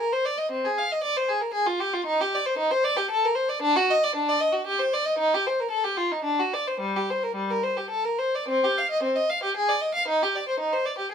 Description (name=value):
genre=classical, baroque-style suite movement for unaccompanied violin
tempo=103-118 BPM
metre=3/4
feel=rubato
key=G minor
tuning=A4 = 439 Hz
part: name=rich violin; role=solo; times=0.0-11.1 s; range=G3 to F5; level=-22 LUFS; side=equal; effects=none
room=light reverb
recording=close, detailed microphones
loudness=-22 LUFS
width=side -7 dB against mid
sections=0.0-8.5 A section; 8.5-11.1 A section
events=none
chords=none